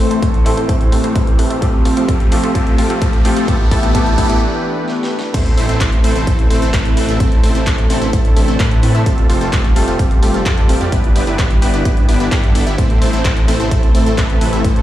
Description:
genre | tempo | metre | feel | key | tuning
EDM, festival progressive house | 129 BPM | 4/4 | straight | A minor | A4 = 440 Hz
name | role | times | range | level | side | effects
bright concert grand piano | accompaniment | 0.0-5.4 s | A2 to A4 | -23 LUFS | equal | sidechain pumping, digital delay
lush unison pad | sustained chords | 0.0-14.8 s | C3 to C5 | -23 LUFS | left 1 dB | chorus, sidechain pumping
supersaw stab | riff | 0.0-14.8 s | A3 to E5 | -18 LUFS | equal | cassette tape, sidechain pumping, low-pass filter, digital delay
riser, swell and sub drop | sound effects | 0.3-7.2 s | none | -28 LUFS | left 1 dB | none
big-room dance drum kit | drums | 0.1-14.8 s | crash cymbal, handclaps, hi-hat, snare drum | -25 LUFS | equal | high-pass filter on hats, high-pass filter on snare, high-pass filter on cymbals
electronic kick drum | drums | 0.2-14.7 s | none | -14 LUFS | equal | none
wide detuned saw bass | bass | 5.3-14.8 s | F1 to A2 | -19 LUFS | equal | chorus, sidechain pumping
room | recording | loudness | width
light reverb | played on a big sound system in a bare room, stone room reverb | -12 LUFS | side -13 dB against mid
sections
0.0-5.3 A section; 5.3-14.8 B section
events
build-up 0.0-5.3; filter sweep on supersaw synth 0.0-5.3; riser 0.3-4.4; drum fill 1.6-4.4, 4.9-5.3; break 4.4-5.3; swell 4.4-5.3; drop 5.3-14.8; impact 5.3-7.2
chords
0.0 Am; 1.6 Fadd9; 3.5 G6; 5.3 Am; 9.1 Fadd9; 10.9 G6; 12.8 Am

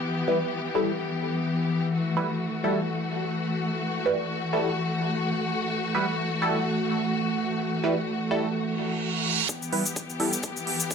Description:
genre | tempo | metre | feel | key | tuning
bass house | 127 BPM | 4/4 | swing 55% on 16ths | E minor | A4 = 441 Hz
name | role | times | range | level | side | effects
rich symphonic string section | sustained chords | 0.0-10.9 s | E3 to G4 | -27 LUFS | left 1 dB | sidechain pumping, low-pass filter
band-passed chord stab | stabs | 0.3-10.4 s | G3 to B4 | -28 LUFS | right 1 dB | phaser, sidechain pumping, digital delay
reverse cymbal and riser | sound effects | 8.8-10.9 s | none | -29 LUFS | right 8 dB | none
electronic hi-hat | drums | 9.5-10.9 s | none | -32 LUFS | right 4 dB | low-pass filter on cymbals, small room ambience, low-pass filter on hats
electronic kick drum | drums | 9.5-10.9 s | none | -37 LUFS | equal | high-pass filter on kick, small room ambience
cabasa | percussion | 9.5-10.9 s | none | -30 LUFS | left 5 dB | none
room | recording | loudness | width
moderate digital room reverb, RT60 1.2 s, digital ambience | none | -24 LUFS | side -6 dB against mid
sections
0.0-9.5 A section; 9.5-10.9 B section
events
filter sweep on synth stab 0.0-9.5; reverse cymbal 8.8-9.5; build-up 9.5-10.9; filter sweep on string section 9.5-10.9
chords
0.0 Em

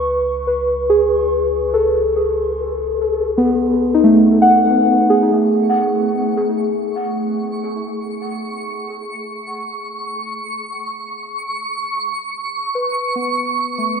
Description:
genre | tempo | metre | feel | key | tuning
ambient | free time | none | none | unclear | A4 = 440 Hz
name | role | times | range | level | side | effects
muted felt-like synth keys | arpeggios | 0.0-14.0 s | A3 to C#6 | -15 LUFS | equal | chorus, tape echo
warm sub bass | bass | 0.0-5.0 s | C#2 | -31 LUFS | left 1 dB | none
twinkling granular texture | texture | 5.9-14.0 s | C#6 | -24 LUFS | right 2 dB | built-in reverb
room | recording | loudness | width
wet lush hall reverb, RT60 3.0 s | none | -15 LUFS | side -6 dB against mid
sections
0.0-5.1 A section; 5.1-14.0 B section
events
fade-out on sub bass 0.0-5.1; fade-in on synth texture 5.1-14.0; fade-out on synth keys 5.1-14.0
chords
0.0 B9/C#; 5.1 C#5; 11.8 Bsus2

